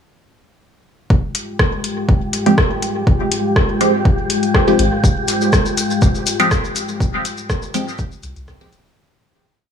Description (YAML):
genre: dub techno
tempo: 122 BPM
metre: 4/4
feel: straight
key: F minor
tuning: A4 = 440 Hz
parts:
  - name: dark analog pad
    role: sustained chords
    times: 1.4-8.9 s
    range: Ab3 to G4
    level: -22 LUFS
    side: left 1 dB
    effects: chorus, phaser, sidechain pumping
  - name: warm sub bass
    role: bass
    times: 1.1-8.9 s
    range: Eb1 to C2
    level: -23 LUFS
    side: equal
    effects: none
  - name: electronic kick drum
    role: drums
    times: 1.1-8.6 s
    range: none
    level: -16 LUFS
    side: equal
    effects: none
  - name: wind-like tuned noise texture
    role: texture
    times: 1.9-9.0 s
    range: G4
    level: -27 LUFS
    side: equal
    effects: built-in reverb, sidechain pumping
  - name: soft vintage rhythm box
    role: drums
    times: 1.3-8.8 s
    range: hi-hat, rim click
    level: -21 LUFS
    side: left 1 dB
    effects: dub echo
  - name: filtered dub chord stab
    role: stabs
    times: 2.5-8.7 s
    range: F3 to G4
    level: -19 LUFS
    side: equal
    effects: phaser, sidechain pumping, dub echo
  - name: maracas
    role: percussion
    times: 5.0-8.9 s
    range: none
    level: -26 LUFS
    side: left 5 dB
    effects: none
room: light reverb, digital ambience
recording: small room ambience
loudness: -14 LUFS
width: side -8 dB against mid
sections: 1.1-9.0 groove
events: fade-out 6.3-9.0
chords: 1.1 Fmadd9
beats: | 1.10 1.59 2.09 2.58 | 3.07 3.56 4.05 4.54 | 5.04 5.53 6.02 6.51 | 7.00 7.50 7.99 8.48